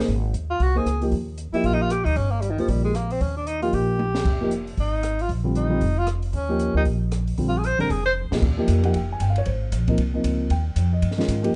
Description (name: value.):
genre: jazz, small-group swing and bop.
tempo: 230 BPM.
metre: 4/4.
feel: swing 60% on 8ths.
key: Eb mixolydian.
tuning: A4 = 440 Hz.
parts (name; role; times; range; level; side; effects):
dark grand piano; accompaniment; 0.0-11.5 s; C3 to Ab5; -28 LUFS; equal; none.
upright bass; bass; 0.0-11.5 s; F1 to Bb2; -26 LUFS; equal; none.
open jazz drum kit; drums; 0.0-11.5 s; crash cymbal, hi-hat, kick drum, ride cymbal, rim click, snare drum, toms; -31 LUFS; equal; none.
clear tenor saxophone; melody; 0.5-8.1 s; Eb3 to C5; -28 LUFS; equal; none.
room: light reverb.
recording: dark, warm production, nothing above 10.5 kHz.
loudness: -23 LUFS.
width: mono.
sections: 0.0-8.4 A section; 8.4-11.6 B section.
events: drum fill 4.0, 8.2.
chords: 0.1 Abadd9; 1.1 Ebadd9; 4.2 Fm7; 5.3 Bb69; 6.3 Eb9; 7.4 Bb69; 8.4 Ebadd9; 9.5 Ab69; 10.5 Eb9.